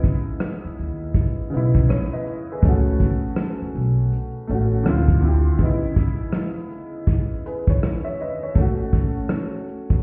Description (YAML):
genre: lo-fi hip hop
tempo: 81 BPM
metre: 4/4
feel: swing 62% on 16ths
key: C# minor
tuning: A4 = 441 Hz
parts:
  - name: warm upright piano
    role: accompaniment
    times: 0.0-10.0 s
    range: C#3 to E5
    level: -28 LUFS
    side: equal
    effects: cassette tape, low-pass filter
  - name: vintage brush drum kit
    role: drums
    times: 0.0-10.0 s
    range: hi-hat, kick drum, rim click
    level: -22 LUFS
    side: equal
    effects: none
  - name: upright bass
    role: bass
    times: 0.6-5.5 s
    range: A1 to D#2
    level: -23 LUFS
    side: equal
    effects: none
room: little or no reverb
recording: heard muffled through a wall, stone room reverb, vinyl crackle, EQ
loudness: -22 LUFS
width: mono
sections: 0.0-10.0 A section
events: break 5.6-10.0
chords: 0.0 C#m9; 2.6 A69; 4.9 Dm9; 5.6 C#m9; 8.6 A6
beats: 0.41 1.15 1.89 | 2.63 3.37 4.11 4.85 | 5.59 6.33 7.07 7.81 | 8.55 9.30